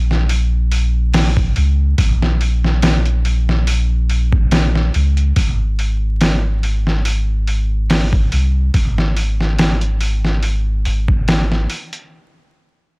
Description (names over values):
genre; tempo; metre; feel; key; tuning
trip hop; 71 BPM; 4/4; swing 54% on 16ths; Bb minor; A4 = 441 Hz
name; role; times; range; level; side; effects
soft dub sub bass; bass; 0.0-11.7 s; Ab1 to Db2; -15 LUFS; equal; none
trip hop sampler-style drum kit; drums; 0.1-12.1 s; hi-hat, kick drum, snare drum; -17 LUFS; equal; overdrive, small room ambience
room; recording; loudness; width
digital ambience; dry, gritty hardware recording, vinyl crackle; -14 LUFS; side -32 dB against mid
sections
0.0-13.0 A section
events
none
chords
none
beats
0.29 1.14 | 1.98 2.83 3.67 4.52 | 5.36 6.21 7.05 7.90 | 8.74 9.59 10.43 11.28